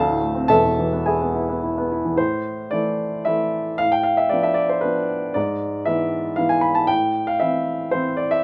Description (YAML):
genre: classical, romantic character piece for solo piano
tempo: 104-119 BPM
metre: 3/4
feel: rubato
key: A minor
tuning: A4 = 438 Hz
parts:
  - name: warm grand piano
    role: solo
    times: 0.0-8.4 s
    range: E1 to B5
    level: -21 LUFS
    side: equal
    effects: none
room: light reverb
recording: none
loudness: -21 LUFS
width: mono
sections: 0.0-2.2 A section; 2.2-8.4 B section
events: none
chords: 0.5 E; 2.2 Am; 3.8 Bm7b5/A; 5.4 E7/G#; 6.9 Am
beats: | 0.49 1.06 1.62 | 2.18 2.72 3.26 | 3.79 4.31 4.83 | 5.35 5.87 6.38 | 6.89 7.41 7.92